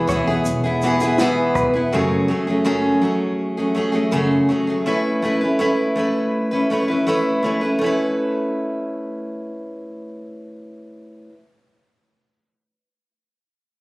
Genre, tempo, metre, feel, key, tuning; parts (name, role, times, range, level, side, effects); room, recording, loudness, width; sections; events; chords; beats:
acoustic pop; 82 BPM; 4/4; straight; A major; A4 = 441 Hz
dark upright piano; melody; 0.0-1.1 s; G#4; -38 LUFS; equal
picked steel-string acoustic guitar; accompaniment; 0.0-11.4 s; F#2 to B4; -18 LUFS; equal
upright bass; bass; 0.0-1.9 s; E1; -26 LUFS; equal
direct-recorded clean electric guitar; arpeggios; 0.1-1.7 s; B4 to C#5; -28 LUFS; right 1 dB
compact cocktail drum kit; drums; 0.1-1.7 s; kick drum, shaker, snare drum; -26 LUFS; equal
light reverb; recorded on a phone in the room, club reverb, compression; -17 LUFS; side -22 dB against mid
0.0-1.9 A section; 1.9-7.8 B section; 7.8-10.7 C section
0.0 E; 1.9 F#madd9; 4.9 Aadd9
0.45 1.19 | 1.92 2.65 3.39 4.12 | 4.86 5.59 6.33 7.06 | 7.79 8.53 9.26 9.99